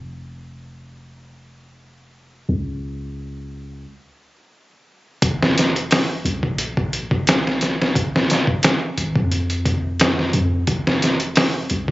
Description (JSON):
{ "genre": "trip hop", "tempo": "88 BPM", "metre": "4/4", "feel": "swing 54% on 16ths", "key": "unclear", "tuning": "A4 = 438 Hz", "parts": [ { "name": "soft 808-style bass", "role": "bass", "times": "0.0-11.9 s", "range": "F1 to F2", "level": "-25 LUFS", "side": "equal", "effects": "none" }, { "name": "trip hop sampler-style drum kit", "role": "drums", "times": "5.2-11.9 s", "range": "hi-hat, kick drum, snare drum", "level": "-18 LUFS", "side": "equal", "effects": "none" } ], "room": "light reverb", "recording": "recorded on a phone in the room, club reverb, compression, nothing above 7.6 kHz", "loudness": "-17 LUFS", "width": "side -18 dB against mid", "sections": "0.0-5.2 A section; 5.2-11.9 B section", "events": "stop 3.9-5.2", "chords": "none" }